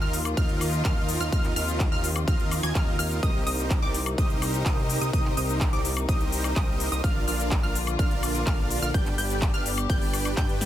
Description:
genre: EDM, festival progressive house.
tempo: 126 BPM.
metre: 4/4.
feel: straight.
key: C minor.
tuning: A4 = 440 Hz.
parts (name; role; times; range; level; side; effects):
warm chamber string section; sustained chords; 0.0-10.7 s; C3 to G4; -34 LUFS; left 2 dB; sidechain pumping.
wide unison pluck; arpeggios; 0.0-10.7 s; D6 to Ab6; -34 LUFS; right 1 dB; sidechain pumping, dub echo.
supersaw chords; riff; 0.0-10.7 s; D4 to Ab5; -32 LUFS; right 2 dB; lush chorus, sidechain pumping, dub echo.
fat analog bass; bass; 0.0-10.7 s; G1 to G2; -30 LUFS; equal; sidechain pumping.
big-room dance drum kit; drums; 0.1-10.7 s; handclaps, hi-hat, shaker, snare drum, woodblock; -32 LUFS; left 2 dB; overdrive.
electronic kick drum; drums; 0.4-10.5 s; none; -25 LUFS; equal; none.
room: little or no reverb.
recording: dense, heavily limited modern master.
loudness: -23 LUFS.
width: side -12 dB against mid.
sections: 0.0-10.7 A section.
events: none.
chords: 0.0 Ebsus2; 3.2 Cm7; 7.0 Bb; 8.9 G.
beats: 0.37 0.85 | 1.32 1.80 2.28 2.75 | 3.23 3.71 4.18 4.66 | 5.13 5.61 6.09 6.56 | 7.04 7.51 7.99 8.47 | 8.94 9.42 9.90 10.37.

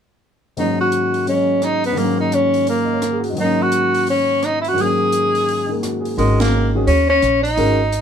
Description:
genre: modal jazz.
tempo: 171 BPM.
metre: 4/4.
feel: swing 63% on 8ths.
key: unclear.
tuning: A4 = 440 Hz.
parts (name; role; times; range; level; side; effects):
warm tenor saxophone; melody; 0.6-8.0 s; G#3 to G#4; -17 LUFS; equal; none.
warm concert grand piano; accompaniment; 0.6-7.8 s; G#2 to D#5; -20 LUFS; left 2 dB; none.
compact cocktail drum kit; drums; 0.6-8.0 s; hi-hat, ride cymbal, rim click, snare drum; -30 LUFS; right 1 dB; none.
upright bass; bass; 6.2-8.0 s; G#1 to D#2; -18 LUFS; right 1 dB; none.
room: wet studio ambience, RT60 0.5 s.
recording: none.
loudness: -15 LUFS.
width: side -8 dB against mid.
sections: 0.6-6.2 A section; 6.2-8.0 B section.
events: band accent 6.4.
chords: 0.6 G#9sus4.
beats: | 0.57 0.92 1.27 1.62 | 1.97 2.32 2.67 3.02 | 3.38 3.73 4.08 4.43 | 4.78 5.13 5.48 5.83 | 6.18 6.53 6.88 7.23 | 7.58 7.93.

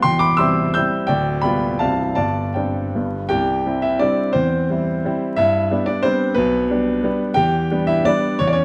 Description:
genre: classical, romantic triple-time dance for piano with dotted rhythms.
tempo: 145-195 BPM.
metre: 3/4.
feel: rubato.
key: C major.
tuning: A4 = 439 Hz.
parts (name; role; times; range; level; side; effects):
warm grand piano; solo; 0.0-8.6 s; C1 to G6; -19 LUFS; equal; none.
room: moderate scoring stage reverb, RT60 1.9 s.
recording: close, detailed microphones, vinyl crackle.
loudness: -19 LUFS.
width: mono.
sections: 0.0-3.3 A section; 3.3-8.6 B section.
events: none.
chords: 0.1 C/E; 1.1 G7/D; 1.8 C; 2.2 Gsus4; 3.0 G; 3.3 C; 4.4 C/E; 5.4 G; 6.4 G/B; 7.4 Em7.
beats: | 0.06 0.39 0.76 | 1.09 1.45 1.81 | 2.17 2.56 2.95 | 3.32 3.67 4.02 | 4.36 4.70 5.06 | 5.39 5.72 6.05 | 6.36 6.69 7.04 | 7.37 7.71 8.07 | 8.40.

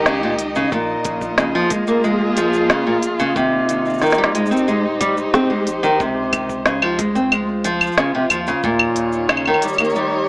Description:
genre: folktronica.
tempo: 91 BPM.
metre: 4/4.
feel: straight.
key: Db lydian.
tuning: A4 = 440 Hz.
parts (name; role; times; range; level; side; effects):
dark string quartet; sustained chords; 0.0-10.3 s; Eb3 to Eb5; -21 LUFS; equal; none.
nylon-string guitar; arpeggios; 0.0-10.3 s; Bb2 to C4; -18 LUFS; equal; vintage 12-bit sampler grit, digital delay.
warm sub bass; bass; 0.0-9.6 s; Eb1 to Eb2; -32 LUFS; equal; none.
organic electronic drum kit; drums; 0.1-10.1 s; cabasa, claves, hi-hat, snare drum; -18 LUFS; equal; none.
electronic kick drum; drums; 0.7-8.8 s; none; -28 LUFS; equal; none.
room: light reverb.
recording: small speaker sound.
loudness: -15 LUFS.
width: side -28 dB against mid.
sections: 0.0-10.3 A section.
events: none.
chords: 0.0 Eb7; 0.7 Bbm7; 3.4 Abmaj7; 6.0 Dbmaj7; 8.6 Eb7.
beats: 0.07 | 0.73 1.39 2.05 2.71 | 3.36 4.02 4.68 5.34 | 6.00 6.66 7.32 7.98 | 8.64 9.30 9.96.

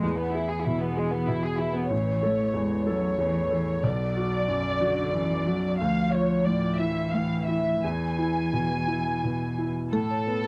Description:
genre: neoclassical piano and strings.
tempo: 56-64 BPM (dotted quarters).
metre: 6/8.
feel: rubato.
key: A major.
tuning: A4 = 439 Hz.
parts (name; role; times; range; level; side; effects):
muted studio violin section; melody; 0.0-10.5 s; G#3 to G#5; -31 LUFS; equal; none.
muted cello; second line; 0.0-9.7 s; D3 to A3; -32 LUFS; equal; none.
felt-muted upright piano; accompaniment; 0.0-10.5 s; A1 to A4; -31 LUFS; equal; none.
buzzing marimba with medium mallets; arpeggios; 9.9-10.5 s; A4 to C#5; -36 LUFS; equal; slapback echo.
room: little or no reverb.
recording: dry, close 1970s-style studio recording.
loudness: -26 LUFS.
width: mono.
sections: 0.0-9.9 A section.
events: none.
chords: 0.0 E; 1.9 A; 3.8 Bm; 5.8 Dmadd9; 7.8 E; 9.9 Aadd9.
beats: | 0.02 0.97 | 1.92 2.88 | 3.84 4.81 | 5.79 6.79 | 7.82 8.88 | 9.94.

